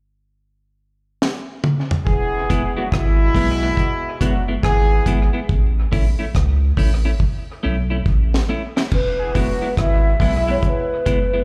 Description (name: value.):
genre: roots reggae.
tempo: 70 BPM.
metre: 4/4.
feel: swing 64% on 16ths.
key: E mixolydian.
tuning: A4 = 443 Hz.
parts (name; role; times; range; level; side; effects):
deep reggae drum kit; drums; 1.2-11.3 s; crash cymbal, hi-hat, kick drum, rim click, snare drum, toms; -23 LUFS; equal; dub echo.
warm horn section; second line; 2.1-11.0 s; B2 to G#4; -26 LUFS; equal; tape echo.
soft dub sub bass; bass; 2.1-11.4 s; E1 to C#2; -21 LUFS; equal; none.
clean electric guitar; accompaniment; 2.5-11.4 s; G#3 to E4; -28 LUFS; equal; tape echo, slapback echo.
mellow hollow alto recorder; melody; 8.9-11.4 s; B4 to E5; -24 LUFS; equal; tape echo.
room: studio ambience.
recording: live gig heard through the venue's PA, club reverb.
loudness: -19 LUFS.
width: mono.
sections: 0.0-2.1 A section; 2.1-8.9 B section; 8.9-11.4 C section.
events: drum fill 1.2-2.1, 7.2-8.9.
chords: 0.0 N.C.; 2.1 E; 5.5 A; 8.9 E.